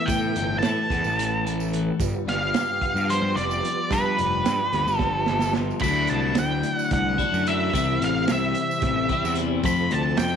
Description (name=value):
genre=psychedelic rock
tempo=220 BPM (eighths)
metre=7/8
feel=straight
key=unclear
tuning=A4 = 441 Hz
part: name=octave-fuzz lead guitar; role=melody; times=0.0-10.4 s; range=B4 to B5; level=-25 LUFS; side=equal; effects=distortion, slapback echo
part: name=mellow tonewheel organ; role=sustained chords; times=0.0-10.4 s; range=F#3 to D5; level=-33 LUFS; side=right 13 dB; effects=chorus vibrato, fast rotary speaker
part: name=twelve-string electric guitar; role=riff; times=0.0-10.4 s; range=F2 to G4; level=-28 LUFS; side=left 12 dB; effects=phaser
part: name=fuzz picked electric bass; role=bass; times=0.1-10.4 s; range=F1 to A2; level=-27 LUFS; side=right 1 dB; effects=overdrive
part: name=crunchy breakbeat drum kit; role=drums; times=0.1-10.3 s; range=crash cymbal, hi-hat, kick drum, snare drum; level=-29 LUFS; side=right 5 dB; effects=none
part: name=tambourine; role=percussion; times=0.1-10.3 s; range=none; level=-42 LUFS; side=right 17 dB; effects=none
room=light reverb, small room ambience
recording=1960s-style stereo with parts hard left and right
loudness=-21 LUFS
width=side -7 dB against mid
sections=0.0-5.8 A section; 5.8-10.4 B section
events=drum fill 5.0-5.8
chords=0.0 Asus2; 2.0 G7; 5.8 Dadd9; 7.7 C; 9.7 F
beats=| 0.09 0.36 0.64 0.91 1.18 1.46 1.73 | 2.00 2.28 2.55 2.83 3.10 3.37 3.65 | 3.92 4.19 4.46 4.74 5.01 5.29 5.56 | 5.83 6.11 6.38 6.65 6.92 7.20 7.47 | 7.74 8.02 8.29 8.56 8.83 9.11 9.38 | 9.65 9.92 10.20